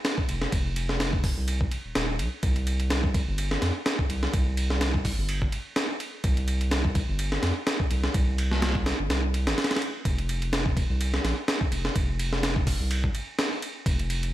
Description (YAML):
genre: breakbeat, breaks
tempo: 126 BPM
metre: 4/4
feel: swing 55% on 16ths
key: unclear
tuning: A4 = 438 Hz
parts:
  - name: breakbeat sampler-style drum kit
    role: drums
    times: 0.0-14.3 s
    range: hi-hat, kick drum, ride cymbal, snare drum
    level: -26 LUFS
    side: equal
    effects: none
  - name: saturated sub bass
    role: bass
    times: 0.3-14.3 s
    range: Eb1 to F2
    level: -27 LUFS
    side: equal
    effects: none
room: little or no reverb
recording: vinyl crackle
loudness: -24 LUFS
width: side -14 dB against mid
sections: 0.0-14.3 A section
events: none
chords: none